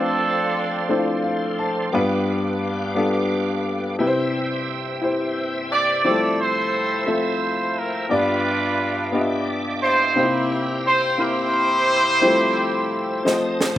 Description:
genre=slow gospel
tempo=58 BPM (dotted quarters)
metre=6/8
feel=straight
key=F major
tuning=A4 = 440 Hz
part: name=bright trumpet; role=melody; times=0.0-1.2, 5.7-13.6 s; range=A4 to D5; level=-23 LUFS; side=right 4 dB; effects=none
part: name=clear horn section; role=melody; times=0.0-1.2, 5.7-13.6 s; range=C4 to D5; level=-23 LUFS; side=left 1 dB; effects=slapback echo
part: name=clear grand piano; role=accompaniment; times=0.0-13.8 s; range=G2 to A5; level=-22 LUFS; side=left 2 dB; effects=slapback echo
part: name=bright tonewheel organ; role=sustained chords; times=0.0-13.8 s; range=F3 to E6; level=-30 LUFS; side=right 3 dB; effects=fast rotary speaker, chorus vibrato
part: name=snare drum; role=drums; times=13.3-13.8 s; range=none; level=-22 LUFS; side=right 1 dB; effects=none
room=little or no reverb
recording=none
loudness=-18 LUFS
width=side -13 dB against mid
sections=0.0-13.8 A section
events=grand piano fill 0.9-1.9; drum fill 13.2-13.8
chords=0.0 Dm7/F; 1.9 G7; 4.0 C; 6.0 Fmaj7; 8.1 G7; 10.2 C7; 12.2 Fmaj7; 13.2 F7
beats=0.90 | 1.93 2.96 | 3.99 5.02 | 6.05 7.08 | 8.10 9.13 | 10.16 11.19 | 12.22 13.25

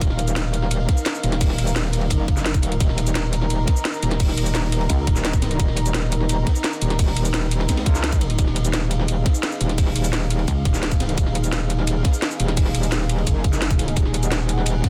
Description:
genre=dark technical drum and bass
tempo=172 BPM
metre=4/4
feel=straight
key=Eb minor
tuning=A4 = 440 Hz
part: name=dark analog pad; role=sustained chords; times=0.0-14.9 s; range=Eb4 to Bb5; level=-32 LUFS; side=equal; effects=chorus, sidechain pumping
part: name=metallic wobble bass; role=bass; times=0.0-14.8 s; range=Eb1 to Db2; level=-24 LUFS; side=equal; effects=distortion, chorus, overdrive, sidechain pumping
part: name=crunchy breakbeat drum kit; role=drums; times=0.0-14.9 s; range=hi-hat, ride cymbal, snare drum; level=-36 LUFS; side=equal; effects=high-pass filter on cymbals, high-pass filter on hats, high-pass filter on snare, high-pass filter on room
part: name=drum and bass drum kit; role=drums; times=0.0-14.9 s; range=hi-hat, shaker, snare drum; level=-28 LUFS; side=equal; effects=none
part: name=electronic kick drum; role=drums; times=0.0-14.9 s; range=none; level=-22 LUFS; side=equal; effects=none
part: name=pulsing pluck wobble bass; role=bass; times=4.9-5.1, 10.5-10.6 s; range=Db2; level=-24 LUFS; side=equal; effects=chorus, tube saturation
room=little or no reverb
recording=dense, heavily limited modern master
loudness=-21 LUFS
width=mono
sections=0.0-14.9 A section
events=none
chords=0.0 Ebmadd9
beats=| 0.01 0.36 0.71 1.06 | 1.41 1.76 2.11 2.46 | 2.80 3.15 3.50 3.85 | 4.20 4.55 4.90 5.25 | 5.59 5.94 6.29 6.64 | 6.99 7.34 7.69 8.04 | 8.39 8.73 9.08 9.43 | 9.78 10.13 10.48 10.83 | 11.18 11.53 11.87 12.22 | 12.57 12.92 13.27 13.62 | 13.97 14.32 14.66

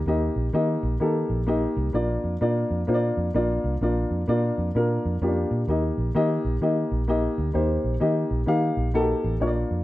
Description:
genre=uptempo 1960s-style soul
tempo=128 BPM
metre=4/4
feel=swing 64% on 8ths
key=unclear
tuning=A4 = 445 Hz
part: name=dark baby grand piano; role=accompaniment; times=0.1-9.8 s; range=Bb3 to F5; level=-24 LUFS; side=left 1 dB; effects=none
part: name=vintage muted fingered electric bass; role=bass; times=0.1-9.8 s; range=A1 to Eb3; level=-26 LUFS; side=right 1 dB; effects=none
room=moderate large studio reverb, RT60 0.9 s, small room ambience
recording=none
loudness=-22 LUFS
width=side -16 dB against mid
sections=0.0-9.8 A section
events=none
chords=0.0 Eb; 1.9 Bb; 5.7 Eb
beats=| 0.06 0.53 1.00 1.47 | 1.94 2.41 2.87 3.34 | 3.81 4.28 4.74 5.21 | 5.68 6.14 6.61 7.08 | 7.54 8.01 8.48 8.94 | 9.41

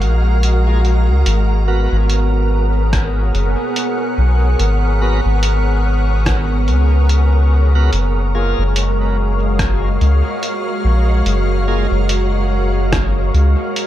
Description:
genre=ambient dub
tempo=72 BPM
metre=4/4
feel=swing 57% on 16ths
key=G# dorian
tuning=A4 = 440 Hz
part: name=soft additive organ-like pad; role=sustained chords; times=0.0-13.9 s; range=G#3 to F#5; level=-20 LUFS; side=right 1 dB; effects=ensemble chorus, built-in reverb
part: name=soft dub sub bass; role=bass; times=0.0-13.6 s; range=F#1 to C#2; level=-14 LUFS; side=equal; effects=none
part: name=lo-fi sampler-style drum kit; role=drums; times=0.0-13.9 s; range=hi-hat, rim click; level=-24 LUFS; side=equal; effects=none
part: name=wind-like tuned noise texture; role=texture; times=0.0-13.9 s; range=F#4 to C#5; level=-30 LUFS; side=left 3 dB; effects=built-in reverb
part: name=bright tonewheel organ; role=stabs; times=0.7-11.9 s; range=A#3 to A#4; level=-29 LUFS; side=right 1 dB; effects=overdrive, slow rotary speaker, dub echo
part: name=electronic kick drum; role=drums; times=2.9-13.1 s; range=none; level=-21 LUFS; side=equal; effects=none
room=light reverb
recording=none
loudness=-13 LUFS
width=side -12 dB against mid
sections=0.0-13.9 A section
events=none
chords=0.0 F#maj9; 1.3 G#m9; 7.9 F#maj9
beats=0.43 | 1.26 2.10 2.93 3.76 | 4.59 5.43 6.26 7.09 | 7.93 8.76 9.60 10.43 | 11.26 12.10 12.93 13.76

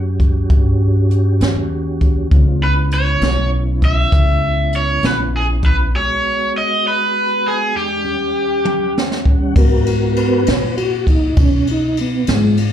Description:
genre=slow blues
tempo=66 BPM (dotted quarters)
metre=12/8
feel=straight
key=G# minor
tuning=A4 = 445 Hz
part: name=mellow tonewheel organ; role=sustained chords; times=0.0-12.6 s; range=D#2 to F#5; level=-21 LUFS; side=equal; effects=slow rotary speaker, chorus vibrato
part: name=upright bass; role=bass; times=0.0-12.7 s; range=A#1 to B2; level=-18 LUFS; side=equal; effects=none
part: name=jazz brush drum kit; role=drums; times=0.2-12.7 s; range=hi-hat, kick drum, ride cymbal, snare drum, toms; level=-16 LUFS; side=equal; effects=none
part: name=raw garage guitar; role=melody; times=2.6-8.9 s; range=G4 to E5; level=-17 LUFS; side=equal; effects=overdrive, slapback echo
room=light reverb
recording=live gig heard through the venue's PA, club reverb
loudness=-13 LUFS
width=side -10 dB against mid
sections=0.0-9.6 A section; 9.6-12.7 B section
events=break 5.9-9.6; drum fill 8.7-9.6; tonewheel organ solo 9.6-12.7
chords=0.0 D#7#9; 2.3 C#m7; 5.9 G#m7; 7.8 D#7#9; 9.6 G#m7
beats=0.51 1.41 | 2.32 3.22 4.13 5.03 | 5.94 6.85 7.75 8.66 | 9.56 10.47 11.38 12.28

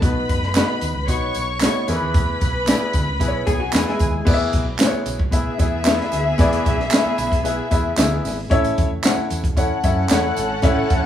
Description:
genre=uptempo 1960s-style soul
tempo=113 BPM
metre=4/4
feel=straight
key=unclear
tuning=A4 = 440 Hz
part: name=warm studio string section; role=second line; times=0.0-11.1 s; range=B3 to C#6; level=-24 LUFS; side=left 1 dB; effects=none
part: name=clear grand piano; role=accompaniment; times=0.0-11.1 s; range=A2 to B5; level=-22 LUFS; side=left 2 dB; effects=none
part: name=picked electric bass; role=bass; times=0.0-11.1 s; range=F#1 to F#2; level=-26 LUFS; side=equal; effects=none
part: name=compact cocktail drum kit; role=drums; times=0.0-11.1 s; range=crash cymbal, hi-hat, kick drum, snare drum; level=-20 LUFS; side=equal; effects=none
part: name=handclaps and tambourine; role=percussion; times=0.6-10.8 s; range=none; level=-29 LUFS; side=right 4 dB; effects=none
part: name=vintage hollow-body jazz guitar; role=riff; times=3.5-4.3 s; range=G#3 to G#4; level=-26 LUFS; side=left 1 dB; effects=none
room=light reverb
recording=band playing live in one room, small room ambience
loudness=-17 LUFS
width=side -10 dB against mid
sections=0.0-4.3 A section; 4.3-11.1 B section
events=grand piano fill 6.9-8.5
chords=0.0 B; 1.9 E; 8.5 A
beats=| 0.03 0.56 1.09 1.62 | 2.15 2.68 3.21 3.74 | 4.27 4.80 5.33 5.86 | 6.39 6.92 7.45 7.98 | 8.51 9.04 9.57 10.10 | 10.63

